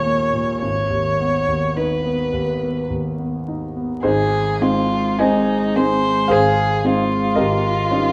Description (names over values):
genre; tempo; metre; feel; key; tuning
classical, romantic duo for violin and grand piano; 51-57 BPM; 3/4; rubato; G# minor, Ab major from 4.0 s; A4 = 440 Hz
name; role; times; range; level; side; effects
rich violin; melody; 0.0-8.1 s; Eb4 to C#5; -23 LUFS; equal; none
clear concert grand piano; accompaniment; 0.0-8.1 s; G#1 to Ab5; -21 LUFS; equal; none
room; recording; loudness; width
wet recital hall reverb, RT60 1.6 s; dark, warm production, vinyl crackle; -19 LUFS; mono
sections
0.0-4.0 A section; 4.0-8.1 B section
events
none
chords
0.0 D#5; 0.6 G#m; 4.0 Ab; 7.4 Eb7/Ab